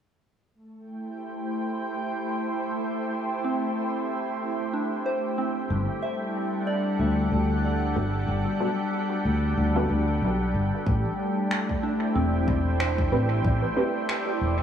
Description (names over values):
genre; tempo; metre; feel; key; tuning
ambient dub; 93 BPM; 4/4; swing 57% on 16ths; A dorian; A4 = 440 Hz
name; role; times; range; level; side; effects
soft additive organ-like pad; sustained chords; 0.5-14.6 s; G3 to G5; -28 LUFS; equal; ensemble chorus, built-in reverb
soft synth bell; arpeggios; 3.4-14.6 s; C4 to E5; -32 LUFS; right 1 dB; chorus, phaser, low-pass filter, dub echo
fingered electric bass; bass; 5.7-14.6 s; E1 to D2; -24 LUFS; equal; tube saturation
filtered dub chord stab; stabs; 8.0-13.9 s; B3 to B4; -31 LUFS; equal; phaser, analog chorus, dub echo
electronic kick drum; drums; 10.9-13.6 s; none; -28 LUFS; equal; none
bubbling stepped-filter texture; texture; 10.9-14.6 s; D5; -38 LUFS; right 6 dB; chorus, built-in reverb
electronic finger snaps; drums; 11.5-14.2 s; none; -33 LUFS; equal; low-pass filter on snare, low-pass filter on room, dub echo
room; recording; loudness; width
moderate echo chamber reverb, RT60 2.4 s; small room ambience; -24 LUFS; side -8 dB against mid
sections
0.5-10.9 A section; 10.9-14.6 B section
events
none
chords
0.5 Am7; 5.7 Gmaj9; 10.9 Am9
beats
| 0.54 1.19 1.83 2.48 | 3.12 3.77 4.42 5.06 | 5.71 6.35 7.00 7.64 | 8.29 8.93 9.58 10.22 | 10.87 11.51 12.16 12.80 | 13.45 14.09